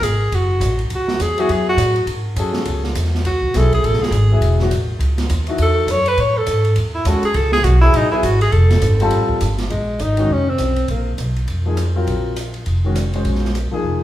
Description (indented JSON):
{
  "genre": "modal jazz",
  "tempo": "204 BPM",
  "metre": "4/4",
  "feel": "swing 61% on 8ths",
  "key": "F# dorian, Bb minor from 9.7 s",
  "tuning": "A4 = 441 Hz",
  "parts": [
    { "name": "mellow tenor saxophone", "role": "melody", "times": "0.0-11.2 s", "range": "Ab3 to C#5", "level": "-18 LUFS", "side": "equal", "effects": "none" },
    { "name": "upright bass", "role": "bass", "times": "0.0-14.0 s", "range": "E1 to A2", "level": "-17 LUFS", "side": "equal", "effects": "none" },
    { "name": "open jazz drum kit", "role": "drums", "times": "0.0-13.6 s", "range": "hi-hat, kick drum, ride cymbal, rim click, snare drum", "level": "-27 LUFS", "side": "right 2 dB", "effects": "none" },
    { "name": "warm grand piano", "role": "accompaniment", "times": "1.4-14.0 s", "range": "Eb3 to C5", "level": "-22 LUFS", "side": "left 2 dB", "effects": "none" }
  ],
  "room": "wet large studio reverb, RT60 1.1 s",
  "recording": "band playing live in one room",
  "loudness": "-15 LUFS",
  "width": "side -13 dB against mid",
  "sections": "0.3-9.7 A section; 9.7-14.0 B section",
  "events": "tenor saxophone solo 0.0-9.7",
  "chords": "0.3 F#m9; 8.5 Fadd9; 9.7 Bb9sus4",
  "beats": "0.02 | 0.31 0.61 0.90 1.19 | 1.49 1.78 2.07 2.37 | 2.66 2.95 3.25 3.54 | 3.83 4.12 4.42 4.71 | 5.00 5.29 5.59 5.88 | 6.17 6.47 6.76 7.05 | 7.35 7.64 7.93 8.23 | 8.52 8.82 9.11 9.40 | 9.70 9.99 10.29 10.59 | 10.88 11.18 11.47 11.77 | 12.06 12.36 12.66 12.95 | 13.25 13.54 13.84"
}